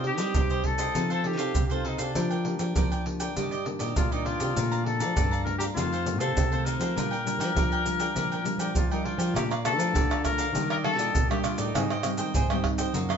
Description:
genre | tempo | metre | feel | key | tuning
samba and choro | 100 BPM | 4/4 | straight | Bb major | A4 = 440 Hz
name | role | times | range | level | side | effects
mellow trumpet | melody | 0.0-12.2 s | D4 to Bb4 | -30 LUFS | left 4 dB | none
cavaquinho | accompaniment | 0.0-13.2 s | D4 to Bb5 | -34 LUFS | right 3 dB | none
nylon-string guitar | accompaniment | 0.0-13.2 s | F2 to D5 | -34 LUFS | left 1 dB | none
nylon-string guitar | bass | 0.0-13.2 s | F2 to G3 | -31 LUFS | equal | none
pandeiro, maracas, surdo and tamborim | percussion | 0.0-13.2 s | none | -29 LUFS | right 1 dB | none
room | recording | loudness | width
wet studio reverb, RT60 0.7 s | band playing live in one room, nothing above 7.7 kHz | -24 LUFS | side -7 dB against mid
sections
0.0-9.4 A section; 9.4-13.2 A section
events
none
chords
0.0 Cmadd9; 1.0 F7; 2.2 Bb6/F; 3.4 Ebmaj7/G; 4.6 Bbmaj7; 5.8 F7; 7.0 Bb6; 9.4 Bbmaj7; 10.6 Ebmaj7; 11.8 Abmaj7

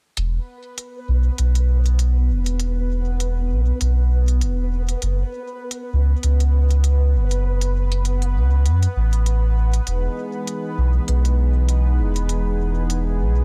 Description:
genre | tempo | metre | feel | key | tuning
IDM | 99 BPM | 4/4 | swing 56% on 16ths | unclear | A4 = 440 Hz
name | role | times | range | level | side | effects
warm sub bass | bass | 0.2-13.4 s | E1 to F#2 | -20 LUFS | equal | tube saturation
electronic hi-hat | drums | 0.2-13.0 s | none | -32 LUFS | equal | none
bubbling stepped-filter texture | texture | 0.4-13.4 s | B3 to B4 | -34 LUFS | equal | chorus, built-in reverb
warm analog pad | sustained chords | 9.9-13.4 s | E3 to G#4 | -30 LUFS | equal | chorus
room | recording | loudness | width
little or no reverb | dense, heavily limited modern master | -20 LUFS | mono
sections
0.2-13.4 A section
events
filter sweep on sub bass 0.2-13.4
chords
0.2 E5; 5.0 F#5; 7.4 Bsus2/F#; 9.9 Emaj7

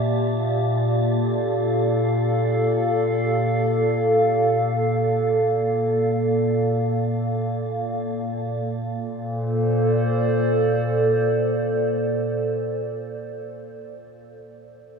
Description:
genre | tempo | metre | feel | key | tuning
ambient | free time | none | none | Bb major | A4 = 440 Hz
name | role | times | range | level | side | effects
warbly tape-like pad | sustained chords | 0.0-13.6 s | Bb2 to F5 | -20 LUFS | equal | chorus, built-in reverb
wind-like tuned noise texture | texture | 0.0-8.7 s | A5 | -42 LUFS | right 3 dB | built-in reverb
room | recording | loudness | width
wet huge ambient reverb, RT60 7.8 s | studio reverb | -20 LUFS | side -5 dB against mid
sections
0.0-8.6 A section; 8.6-12.9 B section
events
fade-out on synth texture 0.0-8.6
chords
0.1 Gm7/Bb; 8.6 Bbmaj7

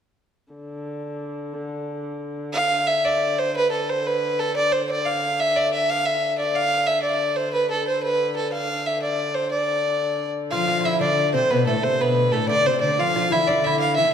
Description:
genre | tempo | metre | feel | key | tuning
medieval dance | 120 BPM (dotted quarters) | 6/8 | straight | D dorian | A4 = 440 Hz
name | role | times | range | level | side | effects
dark hurdy-gurdy | drone | 0.5-14.1 s | D3 | -32 LUFS | left 1 dB | none
warm fiddle | melody | 2.5-14.1 s | A4 to F5 | -20 LUFS | equal | none
dark viola da gamba | second line | 10.5-14.1 s | A2 to F3 | -24 LUFS | left 5 dB | none
lute | second line | 10.5-14.1 s | A3 to F4 | -27 LUFS | right 5 dB | none
room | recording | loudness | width
wet recital hall reverb, RT60 1.6 s | dark, warm production | -19 LUFS | side -8 dB against mid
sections
0.5-2.5 A section; 2.5-10.5 B section; 10.5-14.1 B section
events
none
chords
none

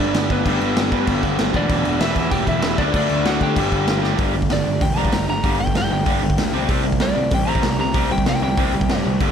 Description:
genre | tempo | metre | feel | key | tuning
punk rock | 192 BPM | 4/4 | straight | G major | A4 = 440 Hz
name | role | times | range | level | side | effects
lightly driven lead guitar | melody | 0.0-9.0 s | B3 to Bb5 | -25 LUFS | equal | ping-pong delay
distorted electric guitar | riff | 0.0-9.3 s | E2 to D4 | -24 LUFS | right 14 dB | overdrive
raw garage guitar | riff | 0.0-9.3 s | E2 to D4 | -25 LUFS | left 16 dB | overdrive
fuzz picked electric bass | bass | 0.0-9.3 s | E1 to D3 | -24 LUFS | equal | overdrive
raw garage drum kit | drums | 0.1-9.3 s | crash cymbal, hi-hat, kick drum, snare drum | -21 LUFS | equal | none
room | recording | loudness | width
light reverb | none | -17 LUFS | side -8 dB against mid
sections
0.0-4.2 A section; 4.2-9.3 B section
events
drum fill 4.0; lead electric guitar solo 4.2-9.3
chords
0.0 G; 1.5 Em; 2.8 D; 3.6 G5; 6.5 C5

